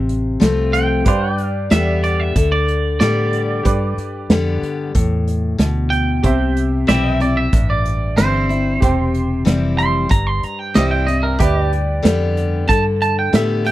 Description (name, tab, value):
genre	honky-tonk and classic country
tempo	93 BPM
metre	4/4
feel	straight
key	C major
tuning	A4 = 440 Hz
part	bright upright piano	accompaniment	0.0-13.7 s	F4 to G5	-27 LUFS	right 6 dB	none
part	picked steel-string acoustic guitar	accompaniment	0.0-13.7 s	G2 to G4	-20 LUFS	left 3 dB	none
part	pedal steel guitar	sustained chords	0.0-13.7 s	D5 to G5	-26 LUFS	left 1 dB	wide subtle chorus
part	vintage muted fingered electric bass	bass	0.0-13.7 s	E1 to A2	-19 LUFS	equal	none
part	unplugged drum kit	drums	0.1-13.7 s	hi-hat, kick drum, snare drum	-16 LUFS	right 1 dB	none
part	twangy electric guitar	second line	0.7-13.7 s	G4 to C6	-21 LUFS	right 4 dB	tape echo
room	little or no reverb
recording	dry, close 1970s-style studio recording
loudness	-14 LUFS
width	side -15 dB against mid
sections	0.0-13.7 A section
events	clean electric guitar solo 0.0-13.7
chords	0.0 F; 1.1 G; 6.2 C; 11.4 G